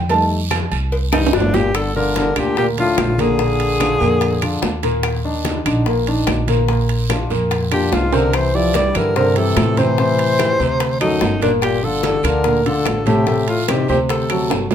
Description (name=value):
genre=Afro-Cuban jazz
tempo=146 BPM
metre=4/4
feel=straight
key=G minor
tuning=A4 = 441 Hz
part: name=warm baby grand piano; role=accompaniment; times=0.0-14.7 s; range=A2 to A5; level=-19 LUFS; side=equal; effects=none
part: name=upright bass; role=bass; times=0.0-14.7 s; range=G1 to A2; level=-22 LUFS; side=equal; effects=none
part: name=agogo bells and timbales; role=percussion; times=0.1-14.7 s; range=none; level=-24 LUFS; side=right 7 dB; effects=none
part: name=congas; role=percussion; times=0.1-14.7 s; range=none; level=-28 LUFS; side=left 2 dB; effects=none
part: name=cowbell and bongos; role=percussion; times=0.1-14.7 s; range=none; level=-24 LUFS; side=left 6 dB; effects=none
part: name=guiro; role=percussion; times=0.1-14.7 s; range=none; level=-32 LUFS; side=right 7 dB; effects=none
part: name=claves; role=percussion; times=0.5-14.5 s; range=none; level=-30 LUFS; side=left 9 dB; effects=none
part: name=breathy alto saxophone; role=melody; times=1.1-4.8, 7.7-14.7 s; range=D4 to D5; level=-20 LUFS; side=equal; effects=none
part: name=warm trombone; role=second line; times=1.1-4.8, 7.7-14.7 s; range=F2 to G3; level=-23 LUFS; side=left 6 dB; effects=none
room=moderate studio reverb, RT60 0.5 s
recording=none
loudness=-15 LUFS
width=side -9 dB against mid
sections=0.0-1.7 A section; 1.7-14.7 B section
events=grand piano solo 0.0-1.7; drum fill 1.1-1.7, 8.1, 14.5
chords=0.1 F9; 1.7 Gm9; 3.4 Bb7; 5.0 Eb5; 6.7 Bbadd9; 8.3 C6; 10.0 Am7; 10.8 D7b9; 11.6 Gm9; 13.3 Adim; 14.1 D7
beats=| 0.10 0.51 0.92 1.33 | 1.75 2.16 2.57 2.98 | 3.39 3.80 4.22 4.63 | 5.04 5.45 5.86 6.28 | 6.69 7.10 7.51 7.92 | 8.33 8.75 9.16 9.57 | 9.98 10.39 10.80 11.21 | 11.62 12.04 12.45 12.86 | 13.27 13.68 14.09 14.51